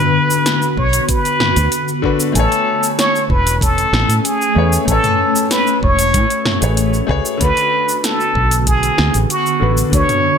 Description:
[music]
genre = sunset chillout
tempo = 95 BPM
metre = 4/4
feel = straight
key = A major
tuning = A4 = 440 Hz
[part]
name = trumpet with plunger mute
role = melody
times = 0.0-10.4 s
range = F#4 to C#5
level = -16 LUFS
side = equal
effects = tape echo
[part]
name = clear grand piano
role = accompaniment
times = 0.0-10.4 s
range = D3 to G#5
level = -22 LUFS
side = moving between left 5 dB and right 2 dB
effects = auto-pan, digital delay
[part]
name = ethereal airy pad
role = sustained chords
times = 0.0-10.4 s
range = D3 to G#5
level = -21 LUFS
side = left 1 dB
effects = ensemble chorus, built-in reverb, phaser
[part]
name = deep house drum kit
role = drums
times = 0.3-10.2 s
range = hi-hat, shaker, snare drum, toms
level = -20 LUFS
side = equal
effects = overdrive
[part]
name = fingered electric bass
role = bass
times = 0.8-10.0 s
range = E1 to A2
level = -16 LUFS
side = equal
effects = none
[part]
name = electronic kick drum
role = drums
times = 0.8-10.1 s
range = none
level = -19 LUFS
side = equal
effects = none
[sound]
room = light reverb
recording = none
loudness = -12 LUFS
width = side -7 dB against mid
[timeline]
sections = 0.0-10.4 A section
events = none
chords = 0.0 D6; 2.3 Amaj9; 7.4 D6

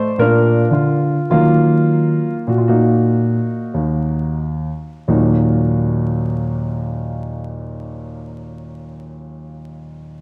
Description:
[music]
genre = classical, baroque-style suite movement for grand piano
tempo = 44-57 BPM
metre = 3/4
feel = rubato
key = Eb minor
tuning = A4 = 439 Hz
[part]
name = warm baby grand piano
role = solo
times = 0.0-10.2 s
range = Eb2 to C5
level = -18 LUFS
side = equal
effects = none
[sound]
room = wet concert hall reverb, RT60 2.3 s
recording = dark, warm production, vinyl crackle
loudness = -17 LUFS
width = mono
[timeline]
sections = 0.0-5.1 A section; 5.1-9.0 B section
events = slowing down 0.0-5.1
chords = 0.2 Bb; 1.3 Ebm

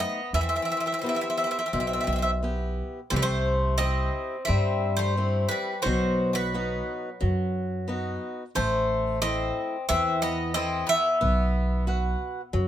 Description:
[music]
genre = greek folk, Greek bouzouki band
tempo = 88 BPM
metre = 4/4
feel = straight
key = unclear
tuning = A4 = 439 Hz
[part]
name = Greek bouzouki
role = melody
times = 0.0-12.7 s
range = B4 to E5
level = -27 LUFS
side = equal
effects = none
[part]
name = Greek bouzouki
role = second line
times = 0.0-12.7 s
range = F#3 to C4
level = -34 LUFS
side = left 4 dB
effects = none
[part]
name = picked swing-style acoustic guitar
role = accompaniment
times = 0.0-12.7 s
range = B2 to F#5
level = -32 LUFS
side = left 2 dB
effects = none
[part]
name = upright bass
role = bass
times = 0.0-12.7 s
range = A1 to G2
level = -27 LUFS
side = right 1 dB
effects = none
[sound]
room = light reverb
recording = minimal, uncompressed stereo recording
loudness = -24 LUFS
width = side -11 dB against mid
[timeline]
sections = 0.0-3.1 A section; 3.1-12.7 B section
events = speeding up 0.0-12.7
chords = 0.3 Em; 3.1 C; 5.9 B; 8.6 Am; 11.2 B5

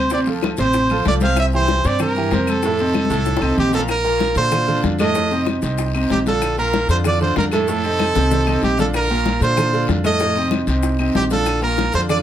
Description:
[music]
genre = latin, salsa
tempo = 190 BPM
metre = 4/4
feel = straight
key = Bb major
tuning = A4 = 441 Hz
[part]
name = brilliant trumpet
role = melody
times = 0.0-12.2 s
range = G4 to F5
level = -20 LUFS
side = right 2 dB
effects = none
[part]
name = bright concert grand piano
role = accompaniment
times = 0.0-12.2 s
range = A2 to C5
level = -21 LUFS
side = right 2 dB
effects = none
[part]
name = upright bass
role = bass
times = 0.0-12.2 s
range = A1 to Bb2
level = -22 LUFS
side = equal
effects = none
[part]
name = bongos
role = percussion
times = 0.1-12.2 s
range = none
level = -27 LUFS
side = left 6 dB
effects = none
[part]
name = congas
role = percussion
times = 0.1-12.2 s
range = none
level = -26 LUFS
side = left 3 dB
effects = none
[part]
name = guiro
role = percussion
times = 0.1-12.2 s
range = none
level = -35 LUFS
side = left 6 dB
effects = none
[part]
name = maracas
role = percussion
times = 0.1-12.2 s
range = none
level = -37 LUFS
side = left 8 dB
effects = none
[part]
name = claves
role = percussion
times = 0.4-12.2 s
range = none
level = -32 LUFS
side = left 8 dB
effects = none
[sound]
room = moderate studio reverb, RT60 0.6 s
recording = none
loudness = -16 LUFS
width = side -10 dB against mid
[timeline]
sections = 0.0-3.9 A section; 3.9-12.2 B section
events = drum fill 2.9-3.9, 7.7-8.9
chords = 0.1 Dm7; 1.4 C7; 2.6 F7; 3.9 Bbadd9; 5.2 F7; 6.4 Bb; 7.7 F7; 8.9 Bbadd9; 10.2 F7; 11.5 Bb

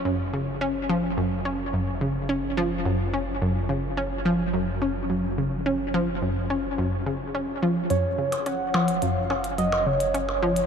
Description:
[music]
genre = ambient, sequencer-driven space music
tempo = 107 BPM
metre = 4/4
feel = straight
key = unclear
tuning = A4 = 440 Hz
[part]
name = round analog bass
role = bass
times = 0.0-10.7 s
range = Gb1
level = -36 LUFS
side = equal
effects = none
[part]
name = analog pluck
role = riff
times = 0.1-10.6 s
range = Gb2 to Db4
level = -24 LUFS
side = equal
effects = chorus, analog delay
[part]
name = pulse-width lead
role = melody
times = 7.9-10.7 s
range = Db5 to Gb5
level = -25 LUFS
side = right 1 dB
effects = chorus, analog delay
[part]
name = electronic hi-hat and percussion blips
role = percussion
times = 7.9-10.7 s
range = none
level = -32 LUFS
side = equal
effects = none
[sound]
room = wet huge ambient reverb, RT60 9.7 s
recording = dark, warm production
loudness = -23 LUFS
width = side -7 dB against mid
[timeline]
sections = 0.0-10.7 A section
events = fade-in on analog synth bass 0.0-10.7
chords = 0.0 Gbmaj7(no3)

